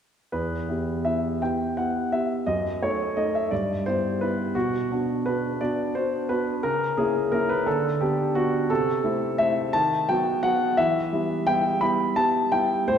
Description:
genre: classical-period piano sonatina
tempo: 58 BPM (dotted quarters)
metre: 6/8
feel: rubato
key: E minor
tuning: A4 = 440 Hz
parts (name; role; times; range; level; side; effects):
- warm concert grand piano; solo; 0.3-13.0 s; E2 to B5; -22 LUFS; equal; none
room: wet scoring stage reverb, RT60 1.9 s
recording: recorded in a church or concert hall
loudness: -22 LUFS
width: side -8 dB against mid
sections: 0.3-13.0 A section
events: none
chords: 0.3 Em; 2.5 D#dim/F#; 3.5 Em/G; 4.6 Bm; 6.6 A#dim/C#; 7.7 Bm/D; 8.7 Am/C; 9.7 B/D#; 10.8 Em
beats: | 0.32 1.41 | 2.47 3.51 | 4.55 5.60 | 6.64 7.67 | 8.70 9.73 | 10.77 11.81 | 12.88

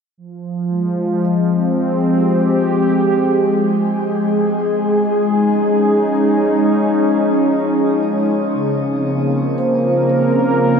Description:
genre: ambient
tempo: 58 BPM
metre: 4/4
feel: straight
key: F minor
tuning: A4 = 440 Hz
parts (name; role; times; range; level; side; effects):
- warm analog pad; sustained chords; 0.2-10.8 s; Db3 to Bb4; -14 LUFS; equal; chorus, shimmer reverb
- analog drone; drone; 4.6-10.8 s; F3; -34 LUFS; left 1 dB; none
- vibraphone with soft mallets; arpeggios; 1.2-10.8 s; Bb4 to G5; -25 LUFS; equal; diffuse ambient delay, shimmer reverb
room: wet huge ambient reverb, RT60 7.0 s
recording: none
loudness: -14 LUFS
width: side -6 dB against mid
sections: 0.2-10.8 A section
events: fade-in on vibraphone 0.2-10.8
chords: 0.2 Fmadd9; 4.4 Dbsus2; 8.5 Bbmadd9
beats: | 0.18 1.24 2.29 3.34 | 4.39 5.44 6.47 7.51 | 8.54 9.58 10.61

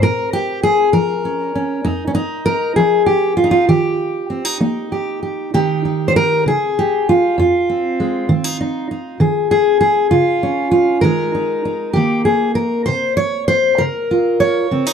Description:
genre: folk, solo fingerstyle acoustic guitar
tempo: 65 BPM (dotted quarters)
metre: 6/8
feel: straight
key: unclear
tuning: A4 = 441 Hz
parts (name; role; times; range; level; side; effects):
- fingerpicked steel-string acoustic guitar; solo; 0.0-14.9 s; F2 to Db5; -14 LUFS; equal; none
room: light reverb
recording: dark, warm production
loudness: -14 LUFS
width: side -7 dB against mid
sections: 0.0-5.5 A section; 5.5-14.9 B section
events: none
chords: 0.0 Bbm; 1.9 N.C.; 3.7 Eb; 5.5 Cm; 6.5 N.C.; 7.4 Fm; 8.3 Ebsus2; 9.2 Ab5/Eb; 10.1 N.C.; 11.0 Ebsus4; 12.0 Eb5; 12.9 N.C.; 13.8 Bbm/Db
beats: | 0.02 0.94 | 1.85 2.77 | 3.68 4.60 | 5.53 6.46 | 7.38 8.29 | 9.20 10.12 | 11.03 11.96 | 12.88 13.81 | 14.72

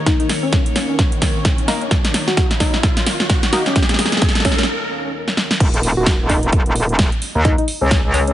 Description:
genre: bass house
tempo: 130 BPM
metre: 4/4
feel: swing 58% on 16ths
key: unclear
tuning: A4 = 440 Hz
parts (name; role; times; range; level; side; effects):
- sweeping resonant pad; sustained chords; 0.0-5.6 s; Eb3 to Db5; -29 LUFS; left 1 dB; chorus, sidechain pumping
- riser; sound effects; 0.0-4.7 s; none; -27 LUFS; equal; none
- deep dark ambient pad; texture; 0.0-4.7 s; Eb4 to F5; -32 LUFS; left 2 dB; none
- soft struck synth lead; melody; 0.1-8.3 s; Db4 to Gb4; -23 LUFS; left 1 dB; chorus, phaser, digital delay
- big-room dance drum kit; drums; 0.1-8.3 s; crash cymbal, hi-hat, snare drum; -20 LUFS; equal; none
- electronic kick drum; drums; 0.1-8.0 s; none; -17 LUFS; equal; none
- band-passed chord stab; stabs; 1.7-3.7 s; Bb3 to Bb4; -28 LUFS; left 2 dB; lush chorus, sidechain pumping, digital delay
- metallic wobble bass; bass; 5.6-8.3 s; Eb1 to Eb2; -17 LUFS; equal; chorus, tube saturation, sidechain pumping
room: light reverb, digital ambience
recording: heavily compressed radio sound, multiband compression, nothing above 10.6 kHz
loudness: -14 LUFS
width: side -13 dB against mid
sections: 0.0-5.6 A section; 5.6-8.3 B section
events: build-up 0.0-5.6; drum fill 0.0-4.7, 5.3-5.6; riser 0.0-4.7; filter sweep on synth stab 0.0-5.6; break 4.7-5.6; drop 5.6-8.3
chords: 0.0 Eb5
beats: | 0.07 0.53 0.99 1.45 | 1.91 2.37 2.83 3.30 | 3.76 4.22 4.68 5.14 | 5.60 6.07 6.53 6.99 | 7.45 7.91

